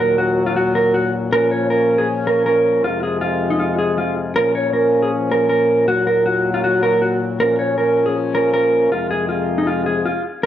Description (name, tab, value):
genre	hip hop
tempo	158 BPM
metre	4/4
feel	half-time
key	Bb minor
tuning	A4 = 440 Hz
part	mellow electric guitar	melody	0.0-10.5 s	Eb4 to Db5	-16 LUFS	right 1 dB	spring reverb
part	warm brass ensemble	sustained chords	0.0-10.5 s	Eb2 to Db4	-21 LUFS	left 3 dB	none
room	light reverb, small room ambience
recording	dry, gritty hardware recording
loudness	-15 LUFS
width	side -11 dB against mid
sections	0.0-10.4 A section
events	none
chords	0.0 Ebm; 1.3 Bbm; 2.8 Fm; 4.4 Bbm; 5.9 Ebm; 7.4 Bbm; 8.9 Fm